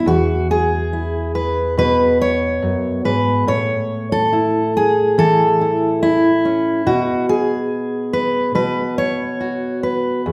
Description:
folk, solo fingerstyle acoustic guitar; 70 BPM; 4/4; straight; E major; A4 = 441 Hz
fingerpicked steel-string acoustic guitar; solo; 0.0-10.3 s; E2 to C#5; -18 LUFS; equal
wet recital hall reverb, RT60 1.3 s; recorded in a church or concert hall; -18 LUFS; mono
0.1-10.3 A section
0.1 E; 3.5 A; 6.9 B5

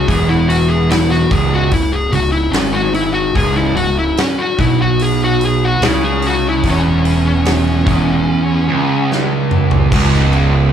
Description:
stoner and doom metal; 73 BPM; 4/4; straight; C# minor; A4 = 435 Hz
fuzz lead guitar; melody; 0.0-9.1 s; C#4 to G#4; -17 LUFS; left 2 dB; distortion, tape echo
fuzz guitar; riff; 0.0-10.7 s; C#2 to C#3; -15 LUFS; right 2 dB; distortion
fuzz fingered electric bass; bass; 0.0-10.7 s; C#1 to C#2; -18 LUFS; right 1 dB; overdrive, tube saturation
big rock drum kit; drums; 0.1-10.5 s; crash cymbal, hi-hat, kick drum, snare drum, toms; -20 LUFS; equal
light reverb; small room ambience; -12 LUFS; side -9 dB against mid
0.0-9.9 A section
drum fill 9.1-9.9
0.0 C#m; 9.9 N.C.

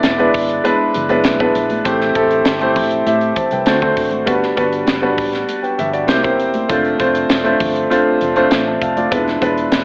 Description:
polished 1980s jazz-funk pop; 99 BPM; 4/4; straight; A4 = 442 Hz
warm grand piano; accompaniment; 0.0-9.8 s; G3 to A5; -17 LUFS; equal; subtle chorus
crisp fusion drum kit; drums; 0.0-9.8 s; hi-hat, kick drum, snare drum; -23 LUFS; equal
congas; percussion; 0.0-9.8 s; -33 LUFS; equal
vintage muted fingered electric bass; bass; 0.1-9.8 s; E1 to A2; -31 LUFS; equal
wet plate reverb, RT60 1.8 s, studio ambience; dreamy mix soaked in reverb, AM radio sound; -16 LUFS; mono
0.0-9.8 A section
0.0 E7; 1.9 Am7; 3.7 D7; 4.3 Gmaj7; 6.1 C7; 6.7 F6; 9.1 E7

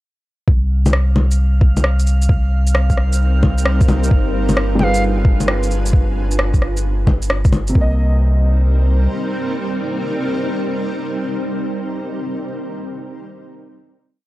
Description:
future garage; 132 BPM; 4/4; swing 67% on 16ths; C minor; A4 = 440 Hz
warm sub bass; bass; 0.5-9.1 s; G1 to C2; -16 LUFS; equal; sidechain pumping
electronic kick drum; drums; 0.5-7.9 s; -14 LUFS; equal
drifting glass-harmonics texture; texture; 1.1-5.9 s; F5; -33 LUFS; right 4 dB; chorus, built-in reverb
electronic bongos, shaker and rim click; drums; 0.9-7.7 s; -20 LUFS; left 1 dB
granular cloud pad; sustained chords; 2.8-12.1 s; G3 to Ab5; -23 LUFS; equal; built-in reverb, sidechain pumping
bright reedy wooden flute; melody; 4.8-5.0 s; F5 to G5; -25 LUFS; right 1 dB; tape echo
dark upright piano; accompaniment; 4.8-12.4 s; C3 to Eb5; -25 LUFS; right 1 dB; sidechain pumping, analog delay
digital ambience; dry, gritty hardware recording, transformer saturation, cassette tape; -14 LUFS; side -17 dB against mid
0.5-7.7 groove; 7.7-11.4 final chord
0.5 Cm7; 4.1 G7b9; 7.7 Cm7

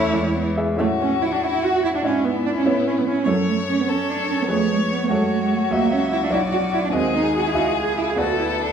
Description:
quick classical-period movement for piano quartet; 97 BPM (dotted quarters); 6/8; rubato; A major; A4 = 442 Hz
clear violin; melody; 0.0-8.7 s; E4 to C#5; -25 LUFS; left 8 dB
warm cello; second line; 0.0-8.7 s; F#3 to G#4; -22 LUFS; right 5 dB
bright concert grand piano; accompaniment; 0.0-8.7 s; B1 to E5; -24 LUFS; left 1 dB
rich viola; accompaniment; 0.0-8.7 s; A3 to E5; -28 LUFS; right 2 dB
wet recital hall reverb, RT60 1.7 s; minimal, uncompressed stereo recording; -18 LUFS; side -7 dB against mid
0.8-8.7 A section
0.1 E; 0.8 A; 2.0 E7/G#; 2.7 A; 3.3 F#m; 4.5 C#7/E#; 5.1 F#m; 5.7 F#5/C#; 6.3 Bm; 6.9 G#5/D#; 7.6 C#m; 8.2 Bm/D

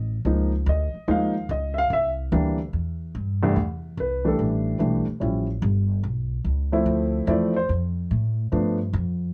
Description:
jazz piano trio; 145 BPM; 4/4; swing 67% on 8ths; C major from 3.6 s; A4 = 442 Hz
upright bass; bass; 0.0-9.3 s; G1 to A2; -27 LUFS; equal
warm baby grand piano; melody; 0.3-8.8 s; C2 to F5; -25 LUFS; equal
light reverb; worn, warbling old tape, cassette tape, warbly pitch drift; -24 LUFS; mono
0.0-3.6 A section; 3.6-9.3 B section
grand piano solo 3.6-9.3
0.3 Db69; 1.9 C; 3.6 C6; 5.2 A7b13; 6.9 Dm9; 8.5 G7

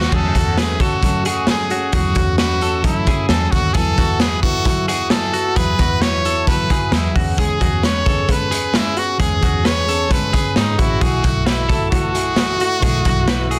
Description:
jangly indie pop; 132 BPM; 4/4; straight; E major; A4 = 442 Hz
brilliant trumpet; melody; 0.0-13.6 s; D#4 to C#5; -23 LUFS; equal; tape echo
twelve-string electric guitar; arpeggios; 0.0-13.6 s; F#4 to B4; -28 LUFS; equal; spring reverb
vintage muted fingered electric bass; bass; 0.0-13.6 s; A1 to G#2; -25 LUFS; equal
raw garage drum kit; drums; 0.0-13.6 s; crash cymbal, hi-hat, kick drum, snare drum; -21 LUFS; equal
fingerpicked plugged-in steel-string acoustic guitar; accompaniment; 0.1-13.6 s; B2 to G#4; -27 LUFS; equal
light reverb, small room ambience; dense, heavily limited modern master; -17 LUFS; mono
0.0-13.6 A section
0.1 F#m7/E; 3.8 Esus2; 7.2 C#m7/E; 11.0 B7sus4

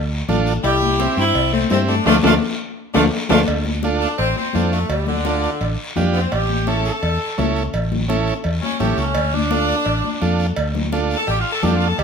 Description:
latin, cumbia; 169 BPM; 4/4; straight; D minor, D harmonic minor from 3.5 s; A4 = 441 Hz
fingered electric bass; bass; 0.0-12.0 s; A1 to G2; -21 LUFS; equal
combo organ; accompaniment; 0.3-11.9 s; C4 to A4; -24 LUFS; right 5 dB
congas; percussion; 0.3-12.0 s; -25 LUFS; left 8 dB
guiro; percussion; 0.3-12.0 s; -33 LUFS; left 3 dB
bright saxophone section; melody; 0.6-12.0 s; D3 to A4; -21 LUFS; equal
clean electric guitar; second line; 0.6-3.4 s; F3 to E4; -21 LUFS; left 6 dB
cowbell and timbales; percussion; 0.6-12.0 s; -26 LUFS; right 3 dB
moderate large studio reverb, RT60 1.2 s; minimal, uncompressed stereo recording; -16 LUFS; side -6 dB against mid
0.0-3.5 A section; 3.5-12.0 B section
band accent 2.1-3.5; drum fill 2.6-3.5; saxophone section solo 3.5-12.0
0.0 Dm; 0.6 C; 2.1 Dm; 6.3 A; 9.2 Dm

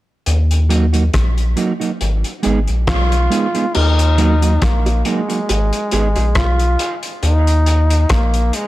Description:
dub reggae; 69 BPM; 4/4; swing 55% on 16ths; Eb minor; A4 = 440 Hz
warm sub bass; bass; 0.3-8.5 s; Ab1 to Eb2; -14 LUFS; equal
cloth-damped thuddy drum kit; drums; 0.3-8.7 s; crash cymbal, hi-hat, kick drum, rim click; -21 LUFS; left 1 dB
mellow electric guitar; accompaniment; 0.7-8.7 s; Gb3 to Ab4; -22 LUFS; right 4 dB; high-pass filter, dub echo
bright trombone; melody; 2.9-8.7 s; Ab3 to F4; -20 LUFS; equal; dub echo
bongos; percussion; 3.7-8.5 s; -29 LUFS; right 2 dB
light reverb, studio reverb; -13 LUFS; side -16 dB against mid
0.3-3.7 A section; 3.7-8.7 B section
filter sweep 3.7-8.7
0.3 Ebm; 2.0 Abm; 3.7 Ebm; 5.5 Abm; 7.2 Ebm

